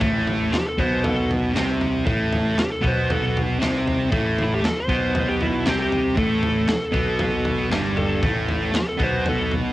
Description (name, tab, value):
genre	garage rock duo or trio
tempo	117 BPM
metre	4/4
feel	straight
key	A minor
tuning	A4 = 440 Hz
part	thick fuzz guitar	riff	0.0-9.7 s	G2 to C4	-22 LUFS	equal	distortion, cassette tape
part	fuzz picked electric bass	bass	0.0-9.7 s	G1 to C2	-28 LUFS	equal	overdrive
part	crunchy breakbeat drum kit	drums	0.0-9.6 s	kick drum, snare drum, toms	-25 LUFS	equal	cassette tape
part	overdriven slide guitar	melody	0.5-9.5 s	E4 to C5	-26 LUFS	equal	none
room	light reverb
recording	home recording on cassette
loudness	-19 LUFS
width	side -16 dB against mid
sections	0.0-9.7 A section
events	none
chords	0.0 Am